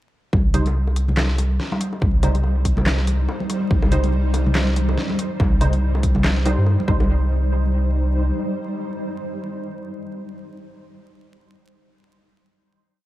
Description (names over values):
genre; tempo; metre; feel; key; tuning
deep dubstep; 142 BPM; 4/4; swing 57% on 16ths, half-time; C minor; A4 = 440 Hz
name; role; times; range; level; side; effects
granular cloud pad; sustained chords; 1.5-10.5 s; G3 to C5; -28 LUFS; equal; built-in reverb
soft dub sub bass; bass; 0.3-8.3 s; C2 to G2; -19 LUFS; equal; none
electronic kick drum; drums; 0.3-7.0 s; none; -20 LUFS; equal; none
congas and bongos; percussion; 0.3-7.1 s; none; -26 LUFS; left 1 dB; dub echo
filtered dub chord stab; stabs; 0.5-10.5 s; G3 to C5; -30 LUFS; right 2 dB; ensemble chorus, dub echo
dubstep drum kit; drums; 0.5-6.6 s; handclaps, hi-hat, snare drum; -25 LUFS; equal; none
room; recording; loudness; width
light reverb; dark, warm production, vinyl crackle; -18 LUFS; side -15 dB against mid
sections
0.3-7.1 drop; 7.1-10.5 final hit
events
drop 0.3-7.1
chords
0.3 Cm